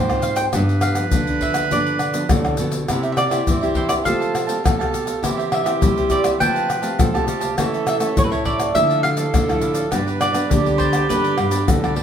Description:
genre	samba and choro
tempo	102 BPM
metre	4/4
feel	straight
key	unclear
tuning	A4 = 440 Hz
part	mandolin	melody	0.0-11.9 s	B4 to G5	-23 LUFS	right 1 dB	none
part	clear clarinet	second line	0.0-12.0 s	G4 to C5	-25 LUFS	right 5 dB	none
part	nylon-string guitar	accompaniment	0.0-12.0 s	G2 to A4	-26 LUFS	left 2 dB	none
part	nylon-string guitar	bass	0.0-12.0 s	G2 to G3	-25 LUFS	equal	none
part	egg shaker, pandeiro, tamborim and surdo	percussion	0.1-12.0 s	none	-21 LUFS	left 2 dB	none
part	cavaquinho	accompaniment	2.9-12.0 s	D4 to A5	-27 LUFS	right 5 dB	none
room	wet studio ambience, RT60 0.5 s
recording	band playing live in one room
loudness	-17 LUFS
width	side -8 dB against mid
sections	0.0-12.0 A section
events	none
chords	0.0 Dm7 (rootless); 0.5 G7; 2.9 C; 4.1 Fadd9; 5.2 C/E; 6.4 Fadd9; 7.6 A/E; 8.8 Dmadd9; 9.9 G

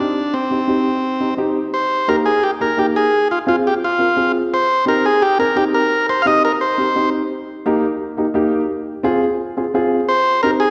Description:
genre	latin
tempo	172 BPM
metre	4/4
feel	straight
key	C minor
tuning	A4 = 440 Hz
part	combo organ	melody	0.0-7.1, 10.1-10.7 s	C4 to F5	-18 LUFS	equal	none
part	dark upright piano	accompaniment	0.0-10.6 s	Bb3 to Bb4	-21 LUFS	equal	none
room	wet scoring stage reverb, RT60 2.0 s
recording	recorded in a church or concert hall, nothing above 10.3 kHz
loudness	-17 LUFS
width	mono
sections	0.0-1.7 A section; 1.7-10.7 B section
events	none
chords	0.0 Cm; 1.7 Eb; 3.1 Fm; 4.5 Cm; 7.3 Eb; 8.7 Fm; 10.1 Cm

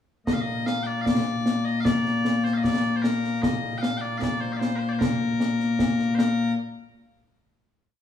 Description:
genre	scottish traditional, Scottish pipe music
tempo	76 BPM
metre	2/4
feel	straight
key	Bb major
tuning	A4 = 440 Hz
part	loud bright bagpipes	melody	0.3-6.6 s	Bb2 to G5	-24 LUFS	left 3 dB	none
part	concert snare drum and concert bass drum	drums	0.3-6.6 s	none	-26 LUFS	equal	none
room	moderate stone room reverb, RT60 1.2 s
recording	band playing live in one room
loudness	-22 LUFS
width	side -9 dB against mid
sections	0.3-6.6 A section; 6.6-8.0 final hit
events	none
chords	none

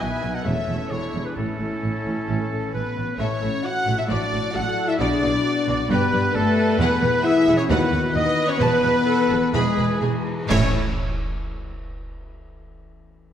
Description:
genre	cinematic, heroic adventure film score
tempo	132 BPM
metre	4/4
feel	straight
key	A major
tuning	A4 = 438 Hz
part	warm symphonic violin section	melody	0.0-10.8 s	G#4 to G#5	-30 LUFS	left 2 dB	none
part	concert flute	second line	0.0-10.8 s	E4 to F#5	-31 LUFS	left 1 dB	none
part	dark symphonic violin section	second line	0.0-10.8 s	D4 to B5	-33 LUFS	left 2 dB	none
part	warm oboe	second line	0.0-10.7 s	G#4 to G#5	-30 LUFS	right 2 dB	none
part	rich symphonic viola section	accompaniment	0.0-10.8 s	D#3 to B4	-30 LUFS	right 1 dB	none
part	dark French horn section	sustained chords	0.0-10.7 s	D#3 to F#4	-24 LUFS	left 3 dB	none
part	concert harp	arpeggios	0.0-10.8 s	E2 to B5	-31 LUFS	left 6 dB	none
part	warm trumpet section	stabs	0.0-10.7 s	C#4 to F#5	-30 LUFS	right 1 dB	none
part	dark tuba	bass	0.0-3.1 s	E1 to B1	-33 LUFS	right 3 dB	none
part	rich studio cello section	bass	0.0-10.8 s	D#2 to B2	-29 LUFS	right 3 dB	none
part	warm symphonic double bass section	bass	0.0-10.8 s	E1 to D#2	-28 LUFS	right 4 dB	none
part	cymbal swell, clash cymbals and concert bass drum	percussion	6.8-11.4 s	none	-31 LUFS	equal	none
room	wet scoring stage reverb, RT60 2.1 s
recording	none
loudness	-19 LUFS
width	side -9 dB against mid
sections	0.0-3.2 A section; 3.2-10.5 B section; 10.5-12.4 C section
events	slowing down 5.9-10.5; band accent 10.5-11.0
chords	0.5 A/E; 0.9 E7; 1.4 A; 4.1 D/A; 5.0 Bm; 5.9 G; 6.8 Eadd9; 7.7 B/D#; 8.6 Esus4; 9.5 E; 10.5 A

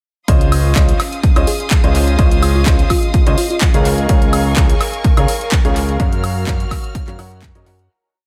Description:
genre	piano house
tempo	126 BPM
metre	4/4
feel	swing 54% on 16ths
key	Db major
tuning	A4 = 440 Hz
part	rich studio violin section	sustained chords	0.3-7.9 s	Gb4 to F6	-30 LUFS	equal	sidechain pumping
part	clear upright piano	riff	0.3-7.9 s	F4 to Gb5	-25 LUFS	equal	sidechain pumping, analog delay
part	fat analog bass	bass	0.3-7.9 s	Db2 to Gb2	-18 LUFS	equal	sidechain pumping
part	electronic kick drum	drums	0.3-7.5 s	none	-16 LUFS	equal	overdrive, studio reverb
part	house drum kit	drums	0.3-7.9 s	handclaps, hi-hat, woodblock	-25 LUFS	equal	overdrive, studio reverb, analog delay
part	warbly tape-like pad	texture	1.0-7.9 s	Db4 to Db6	-31 LUFS	equal	chorus, built-in reverb, sidechain pumping
part	bell-like FM electric piano	melody	1.5-3.6 s	F4 to Ab4	-25 LUFS	equal	chorus, analog delay
room	digital ambience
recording	echo-heavy mix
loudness	-14 LUFS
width	mono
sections	0.3-7.9 drop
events	drop 0.3-7.9; fade-out 5.4-7.9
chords	0.3 Dbmaj9; 3.9 Bbm7/Db; 6.0 Gbmaj7

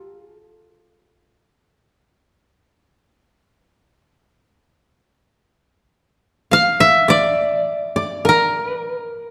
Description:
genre	japanese traditional, Japanese chamber music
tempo	52 BPM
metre	4/4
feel	rubato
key	A miyako bushi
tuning	A4 = 442 Hz
part	koto	melody	0.0-9.3 s	A4 to F5	-18 LUFS	equal	none
part	koto	second line	0.0-9.3 s	A4 to F5	-24 LUFS	equal	none
room	moderate concert hall reverb, RT60 2.0 s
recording	dark, warm production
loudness	-17 LUFS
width	mono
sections	0.0-5.9 A section; 5.9-9.3 B section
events	none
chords	none

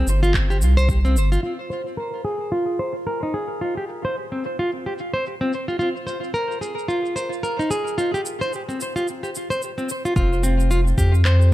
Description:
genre	organic downtempo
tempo	110 BPM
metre	4/4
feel	swing 59% on 16ths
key	F minor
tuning	A4 = 440 Hz
part	nylon-string guitar	arpeggios	0.0-11.5 s	C4 to C5	-23 LUFS	equal	low-pass filter, tape echo
part	round analog bass	bass	0.0-1.4, 10.2-11.5 s	F1 to F2	-16 LUFS	equal	sidechain pumping
part	electronic shaker and handclaps	drums	0.1-11.5 s	none	-31 LUFS	right 1 dB	low-pass filter on snare, low-pass filter on perc
part	electronic kick drum	drums	0.3-1.0, 10.2-11.1 s	none	-22 LUFS	equal	none
room	light reverb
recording	echo-heavy mix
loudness	-20 LUFS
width	side -15 dB against mid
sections	0.0-1.4 A section; 1.4-10.2 B section; 10.2-11.5 C section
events	filter sweep on nylon-string guitar 1.4-10.2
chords	0.0 C5; 1.4 Fm; 3.6 Csus4; 5.8 Ebsus4 (rootless); 8.0 C5; 10.2 F5

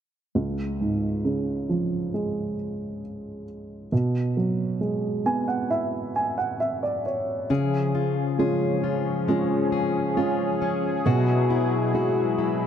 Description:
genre	pop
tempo	67 BPM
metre	4/4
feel	straight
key	unclear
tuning	A4 = 441 Hz
part	dark upright piano	accompaniment	0.4-12.7 s	C#2 to G#5	-24 LUFS	right 2 dB	none
part	warm analog pad	sustained chords	7.5-12.7 s	B2 to G#4	-27 LUFS	left 1 dB	chorus, tremolo
part	fingerpicked plugged-in steel-string acoustic guitar	arpeggios	7.5-12.7 s	B2 to G#4	-27 LUFS	left 8 dB	none
room	moderate lush hall reverb, RT60 2.8 s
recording	dark, warm production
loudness	-22 LUFS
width	side -8 dB against mid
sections	0.3-7.5 A section; 7.5-12.7 B section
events	upright piano fill 4.8-7.5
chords	0.3 C#; 3.9 Eadd9/B; 7.5 C#; 11.1 Eadd9/B

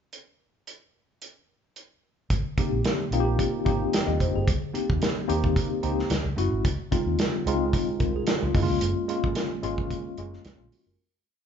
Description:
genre	polished 1980s jazz-funk pop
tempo	110 BPM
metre	4/4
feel	swing 54% on 16ths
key	Ab major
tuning	A4 = 440 Hz
part	modern studio drum kit	drums	0.1-10.9 s	hi-hat, kick drum, snare drum	-27 LUFS	equal	none
part	vintage muted fingered electric bass	bass	2.3-10.9 s	F1 to Eb2	-29 LUFS	equal	none
part	tine electric piano	accompaniment	2.6-11.1 s	Ab3 to G5	-27 LUFS	left 2 dB	medium stereo tremolo
room	moderate large studio reverb, RT60 1.1 s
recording	band playing live in one room, nothing above 7.6 kHz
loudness	-23 LUFS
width	side -8 dB against mid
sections	0.1-2.3 pickup bar; 2.3-11.0 verse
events	fade-out 8.8-11.0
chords	0.1 N.C.; 2.3 Abmaj7; 4.5 Cm7; 6.1 Dmaj7; 6.6 Dbmaj7; 8.6 Gbmaj7

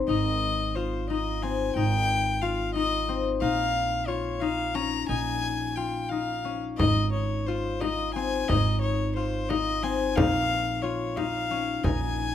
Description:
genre	contemporary instrumental, chamber music in an uneven meter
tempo	179 BPM (eighths)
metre	5/8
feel	straight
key	Ab major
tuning	A4 = 440 Hz
part	concert harp	arpeggios	0.0-12.3 s	C4 to F4	-29 LUFS	left 6 dB	none
part	upright bass	bass	0.0-12.3 s	Ab1 to Bb1	-30 LUFS	right 3 dB	none
part	warm violin	melody	0.1-12.3 s	C5 to Bb5	-29 LUFS	left 4 dB	none
part	frame drum	percussion	6.8-12.2 s	none	-29 LUFS	equal	none
room	moderate recital hall reverb, RT60 1.3 s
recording	close, detailed microphones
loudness	-24 LUFS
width	side -10 dB against mid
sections	0.1-12.3 A section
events	none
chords	0.1 Ab; 3.4 Bbm7; 6.8 Ab; 10.2 Bbm7

